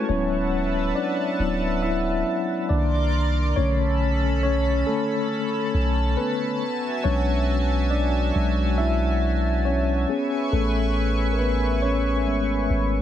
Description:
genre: R&B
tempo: 69 BPM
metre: 4/4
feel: straight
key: unclear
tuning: A4 = 441 Hz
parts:
  - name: mellow tine electric piano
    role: accompaniment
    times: 0.0-13.0 s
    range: D3 to E5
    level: -24 LUFS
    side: left 2 dB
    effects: medium stereo tremolo
  - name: chorused pulse-width pad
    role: sustained chords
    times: 0.0-13.0 s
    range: C#4 to D6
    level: -28 LUFS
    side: right 1 dB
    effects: none
  - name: long sustained 808-style bass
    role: bass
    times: 0.1-13.0 s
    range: D1 to C2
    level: -24 LUFS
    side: equal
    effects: none
room: light reverb, digital ambience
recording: none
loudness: -20 LUFS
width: side -10 dB against mid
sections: 0.1-13.0 A section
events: tine electric piano solo 0.1-13.0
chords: 0.1 D69; 2.7 Cm9; 3.6 Bm9; 6.6 E9/B; 10.1 Amaj9

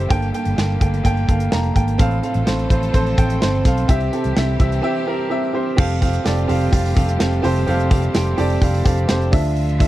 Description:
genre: piano-driven pop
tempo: 127 BPM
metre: 4/4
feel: straight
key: F major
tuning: A4 = 440 Hz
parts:
  - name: warm baby grand piano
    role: accompaniment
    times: 0.0-9.9 s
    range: G2 to Bb5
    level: -20 LUFS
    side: right 2 dB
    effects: none
  - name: clear studio string section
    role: sustained chords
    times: 0.0-9.9 s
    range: C3 to E5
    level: -30 LUFS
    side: left 2 dB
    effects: none
  - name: fingered electric bass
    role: bass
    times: 0.0-9.9 s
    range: F1 to D2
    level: -20 LUFS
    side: equal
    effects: none
  - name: modern studio drum kit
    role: drums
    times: 0.1-9.9 s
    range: crash cymbal, hi-hat, kick drum, snare drum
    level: -18 LUFS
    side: equal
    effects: none
room: small room reverb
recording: dry, close 1970s-style studio recording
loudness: -16 LUFS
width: side -15 dB against mid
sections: 0.0-5.8 A section; 5.8-9.9 B section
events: grand piano fill 1.1-2.0; break 4.8-5.8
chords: 0.1 Gmadd9; 2.0 F/A; 3.9 C; 5.8 Fadd9; 9.3 Dmadd9

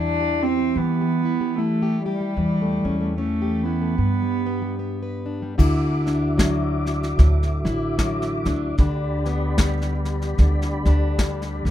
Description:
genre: acoustic folk duo or small band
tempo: 75 BPM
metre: 4/4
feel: swing 59% on 8ths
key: unclear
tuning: A4 = 441 Hz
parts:
  - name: warm cello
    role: second line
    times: 0.0-5.2 s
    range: G3 to D4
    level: -23 LUFS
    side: right 3 dB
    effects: none
  - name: fingerpicked plugged-in steel-string acoustic guitar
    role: accompaniment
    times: 0.0-11.7 s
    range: G2 to B4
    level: -25 LUFS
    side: left 2 dB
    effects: none
  - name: upright bass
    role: bass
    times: 0.0-11.7 s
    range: A1 to E3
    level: -24 LUFS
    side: equal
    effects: none
  - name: mellow tonewheel organ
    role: sustained chords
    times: 5.6-11.7 s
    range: F#4 to D6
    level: -30 LUFS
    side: equal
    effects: slow rotary speaker, chorus vibrato
  - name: soft brush drum kit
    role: drums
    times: 5.6-11.7 s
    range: crash cymbal, kick drum, snare drum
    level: -22 LUFS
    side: equal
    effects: none
room: little or no reverb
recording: minimal, uncompressed stereo recording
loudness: -19 LUFS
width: side -11 dB against mid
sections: 0.0-5.6 A section; 5.6-11.7 B section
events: cello solo 0.0-5.6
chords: 0.0 Em; 2.4 A7/E; 4.0 G; 5.6 Dadd9; 8.8 G/D

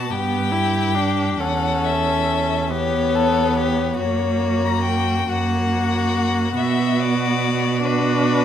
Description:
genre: classical, slow romantic movement for string quartet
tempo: 46 BPM (dotted quarters)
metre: 6/8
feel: rubato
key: B minor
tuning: A4 = 440 Hz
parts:
  - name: clear violin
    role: melody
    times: 0.0-8.4 s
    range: B4 to A#5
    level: -24 LUFS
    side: left 8 dB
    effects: none
  - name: clear violin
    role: second line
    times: 0.0-8.4 s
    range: F#4 to A4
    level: -25 LUFS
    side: left 4 dB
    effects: none
  - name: rich viola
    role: accompaniment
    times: 0.0-8.4 s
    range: A#3 to E4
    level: -22 LUFS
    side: right 1 dB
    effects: none
  - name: rich cello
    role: bass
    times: 0.0-8.4 s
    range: E2 to B2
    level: -23 LUFS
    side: right 4 dB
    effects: none
room: moderate scoring stage reverb, RT60 1.5 s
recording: none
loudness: -18 LUFS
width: side -9 dB against mid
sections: 0.0-8.4 A section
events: none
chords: 0.1 G; 1.4 C#dim/E; 4.0 F#; 6.6 Bm

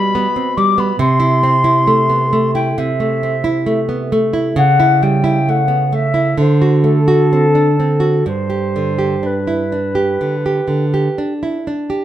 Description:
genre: romantic duo for flute and classical guitar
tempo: 61-70 BPM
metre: 4/4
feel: rubato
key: G major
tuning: A4 = 440 Hz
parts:
  - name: silver concert flute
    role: melody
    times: 0.0-11.2 s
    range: A4 to D6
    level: -17 LUFS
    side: left 2 dB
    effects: plate reverb
  - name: nylon-string guitar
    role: accompaniment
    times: 0.0-12.0 s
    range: G2 to G4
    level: -14 LUFS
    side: right 2 dB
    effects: none
room: wet studio reverb, RT60 0.6 s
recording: heard from further back in the room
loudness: -12 LUFS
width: side -12 dB against mid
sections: 0.0-12.0 A section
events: none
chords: 0.0 G/B; 1.0 Am/C; 4.6 A7/C#; 6.4 D7; 8.3 G

